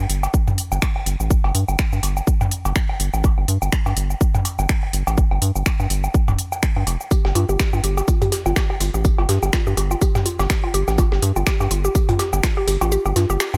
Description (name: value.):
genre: minimal techno.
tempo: 124 BPM.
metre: 4/4.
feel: swing 57% on 16ths.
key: unclear.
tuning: A4 = 439 Hz.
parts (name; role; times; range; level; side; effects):
rubbery square bass; bass; 0.0-13.6 s; D1 to G2; -23 LUFS; equal; tube saturation, sidechain pumping.
house drum kit; drums; 0.1-13.6 s; finger snaps, hi-hat, shaker; -28 LUFS; equal; none.
electronic cowbell, woodblock and toms; percussion; 0.2-13.6 s; none; -28 LUFS; equal; overdrive, dub echo.
electronic kick drum; drums; 0.3-12.5 s; none; -21 LUFS; equal; none.
hollow square pluck; riff; 7.1-13.6 s; F4 to G4; -26 LUFS; equal; chorus, sidechain pumping, dub echo.
dusty soul sampler-style drum kit; drums; 7.1-13.5 s; hi-hat, snare drum, tambourine; -37 LUFS; equal; high-pass filter on snare, high-pass filter on perc, high-pass filter on hats, high-pass filter on room.
room: digital ambience.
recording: none.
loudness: -20 LUFS.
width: mono.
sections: 0.0-13.6 A section.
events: kick drops out 12.9-13.6.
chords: none.